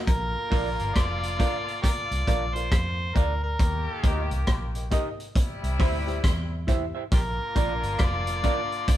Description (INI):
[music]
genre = roots reggae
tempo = 68 BPM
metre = 4/4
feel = swing 63% on 16ths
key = Bb major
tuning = A4 = 440 Hz
[part]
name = dark upright piano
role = stabs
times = 0.0-8.7 s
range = D4 to F5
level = -35 LUFS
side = left 3 dB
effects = none
[part]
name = overdriven harmonica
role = melody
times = 0.1-9.0 s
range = F4 to D5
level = -30 LUFS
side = left 1 dB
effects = none
[part]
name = clear horn section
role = second line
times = 0.1-9.0 s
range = C3 to G4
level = -35 LUFS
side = left 1 dB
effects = none
[part]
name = vintage muted fingered electric bass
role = bass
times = 0.1-8.4 s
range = F1 to F2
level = -29 LUFS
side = equal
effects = none
[part]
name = vintage drum kit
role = drums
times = 0.1-9.0 s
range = hi-hat, kick drum, rim click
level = -25 LUFS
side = equal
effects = none
[part]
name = semi-hollow electric guitar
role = accompaniment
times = 0.5-8.6 s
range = D4 to E5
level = -33 LUFS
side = right 7 dB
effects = none
[sound]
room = light reverb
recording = band playing live in one room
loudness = -23 LUFS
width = side -13 dB against mid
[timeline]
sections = 0.1-9.0 A section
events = none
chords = 0.1 Bb; 3.6 Eb; 5.4 C; 7.1 Bb